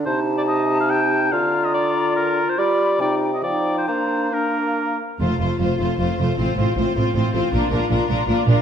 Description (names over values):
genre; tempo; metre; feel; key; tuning
classical; 134-160 BPM; 3/4; rubato; Bb major, F major from 5.2 s; A4 = 440 Hz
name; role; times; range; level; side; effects
warm bassoon; accompaniment; 0.0-5.0 s; C3 to Bb3; -24 LUFS; right 2 dB; none
hollow concert flute; second line; 0.1-5.0 s; G5 to B5; -26 LUFS; left 3 dB; none
warm clarinet; second line; 0.1-5.0 s; D4 to F4; -24 LUFS; left 1 dB; none
warm oboe; second line; 0.1-5.0 s; Bb4 to G5; -22 LUFS; equal; none
warm symphonic violin section; melody; 5.2-8.6 s; Bb4 to C5; -28 LUFS; left 5 dB; none
warm symphonic violin section; second line; 5.2-8.6 s; F4; -24 LUFS; left 4 dB; none
rich symphonic viola section; accompaniment; 5.2-8.6 s; A3 to D4; -26 LUFS; right 2 dB; none
clear symphonic double bass section; bass; 5.2-8.5 s; F1 to Bb1; -23 LUFS; right 2 dB; none
rich symphonic cello section; bass; 5.2-8.5 s; F2 to Bb2; -23 LUFS; right 2 dB; none
room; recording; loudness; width
moderate scoring stage reverb, RT60 1.9 s; dark, warm production; -18 LUFS; side -8 dB against mid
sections
0.0-5.2 A section; 5.2-8.6 B section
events
none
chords
0.1 Adim/C; 1.3 Bb/D; 2.6 G7; 3.0 Cm; 3.4 Fsus2; 3.9 Bb; 5.2 F; 6.4 F/A; 7.5 Bb